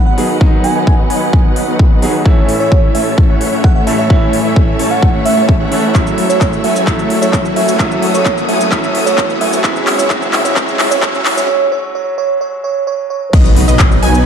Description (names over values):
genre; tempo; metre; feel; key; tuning
EDM, festival progressive house; 130 BPM; 4/4; straight; C# minor; A4 = 441 Hz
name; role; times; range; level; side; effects
bell-like FM electric piano; melody; 0.0-13.3 s; C#5 to G#5; -18 LUFS; right 4 dB; chorus, tremolo, digital delay
bright grand piano; accompaniment; 0.0-13.4 s; A2 to A4; -20 LUFS; right 2 dB; sidechain pumping, digital delay
rich studio string section; sustained chords; 0.0-14.3 s; C#3 to D#6; -21 LUFS; left 2 dB; sidechain pumping, low-pass filter
big supersaw lead; riff; 0.0-14.3 s; F#3 to A5; -18 LUFS; equal; sidechain pumping, low-pass filter, digital delay
wide detuned saw bass; bass; 0.0-14.3 s; F#1 to C#2; -23 LUFS; equal; none
riser and impact; sound effects; 2.7-14.3 s; none; -22 LUFS; equal; none
big-room dance drum kit; drums; 0.2-14.2 s; crash cymbal, handclaps, hi-hat, shaker; -19 LUFS; left 1 dB; none
electronic kick drum; drums; 0.4-13.9 s; none; -11 LUFS; equal; none
wide unison pluck; arpeggios; 13.3-14.3 s; D#5 to G#5; -20 LUFS; equal; sidechain pumping, digital delay
room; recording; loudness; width
light reverb, digital ambience; dark, warm production, high-pass filter; -10 LUFS; side -8 dB against mid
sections
0.0-13.3 A section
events
build-up 0.0-13.3; filter sweep on supersaw synth 0.0-13.3; filter sweep 0.0-13.3; riser 2.7-11.5; drum fill 5.9-11.5; break 11.5-13.3; impact 13.3-14.3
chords
0.0 B; 2.3 A; 5.9 F#m7; 9.6 C#m; 13.3 B